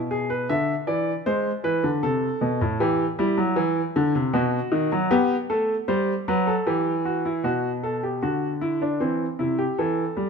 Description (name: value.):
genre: classical, baroque-style two-part invention for grand piano.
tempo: 77 BPM.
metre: 3/4.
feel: straight.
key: unclear.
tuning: A4 = 440 Hz.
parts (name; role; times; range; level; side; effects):
clear grand piano; solo; 0.0-10.3 s; A2 to E5; -21 LUFS; equal; none.
room: light reverb.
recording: close, detailed microphones.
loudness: -21 LUFS.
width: side -5 dB against mid.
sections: 0.0-7.4 A section; 7.4-10.3 B section.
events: none.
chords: 0.5 E7/D; 2.0 Am/C; 2.8 Em; 4.3 B; 5.1 B5; 6.7 Em; 7.4 Gmaj7/B; 9.0 C/E; 9.8 F#m7/E (rootless).